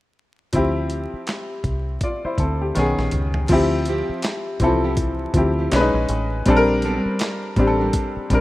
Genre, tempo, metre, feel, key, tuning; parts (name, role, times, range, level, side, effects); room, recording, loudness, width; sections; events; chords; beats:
R&B, neo-soul; 81 BPM; 4/4; swing 59% on 16ths; D minor; A4 = 440 Hz
bright baby grand piano; accompaniment; 0.5-8.4 s; D#3 to D5; -20 LUFS; left 1 dB
deep dub fingered electric bass; bass; 0.5-8.4 s; A1 to D2; -23 LUFS; equal
dusty soul sampler-style drum kit; drums; 0.5-8.4 s; crash cymbal, handclaps, hi-hat, kick drum, snare drum, toms; -25 LUFS; equal
nylon-string guitar; second line; 3.9-7.9 s; F3 to Bb4; -28 LUFS; right 2 dB
light reverb, digital ambience; rough home demo mix, vinyl crackle; -18 LUFS; side -17 dB against mid
0.5-3.5 A section; 3.5-8.4 B section
drum fill 2.8-3.5
0.5 Dm11; 2.8 B69; 3.5 Dm11; 5.7 B69; 6.5 Bb69
| 0.53 1.27 2.02 2.75 | 3.50 4.24 4.98 5.72 | 6.46 7.20 7.94